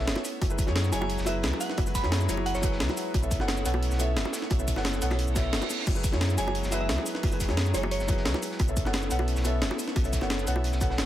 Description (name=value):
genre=liquid drum and bass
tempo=176 BPM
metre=4/4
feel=straight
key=F# minor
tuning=A4 = 440 Hz
part: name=felt-muted upright piano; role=accompaniment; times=0.0-11.1 s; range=F#3 to F#5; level=-32 LUFS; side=left 1 dB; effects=dub echo
part: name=airy breathy pad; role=sustained chords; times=0.0-11.1 s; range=G#3 to E4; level=-38 LUFS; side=right 4 dB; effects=chorus
part: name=sub bass with octave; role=bass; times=0.0-11.1 s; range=F#1 to F#2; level=-29 LUFS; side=equal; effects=none
part: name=breakbeat sampler-style drum kit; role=drums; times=0.1-11.1 s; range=cabasa, crash cymbal, hi-hat, snare drum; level=-32 LUFS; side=equal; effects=none
part: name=crunchy breakbeat drum kit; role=drums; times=0.1-11.1 s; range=hi-hat, snare drum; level=-40 LUFS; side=equal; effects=none
part: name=bongos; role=percussion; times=0.2-10.9 s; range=none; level=-38 LUFS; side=right 1 dB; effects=none
part: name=electronic kick drum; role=drums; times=0.4-10.9 s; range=none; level=-28 LUFS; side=equal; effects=none
part: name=glassy synth bell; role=melody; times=0.9-2.9, 6.4-8.3 s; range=C#5 to B5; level=-37 LUFS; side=right 2 dB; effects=chorus, vintage 12-bit sampler grit, dub echo
part: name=reverse cymbal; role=sound effects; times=5.3-5.9 s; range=none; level=-39 LUFS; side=right 6 dB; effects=none
room=small room ambience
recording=none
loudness=-25 LUFS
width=side -12 dB against mid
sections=0.0-11.1 A section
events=reverse cymbal 5.3-5.9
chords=0.4 F#9sus4; 3.1 B9sus4; 5.9 F#9sus4; 8.6 B9sus4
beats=0.07 | 0.41 0.76 1.10 1.44 | 1.78 2.12 2.46 2.80 | 3.14 3.48 3.82 4.17 | 4.51 4.85 5.19 5.53 | 5.87 6.21 6.55 6.89 | 7.23 7.57 7.92 8.26 | 8.60 8.94 9.28 9.62 | 9.96 10.30 10.64 10.98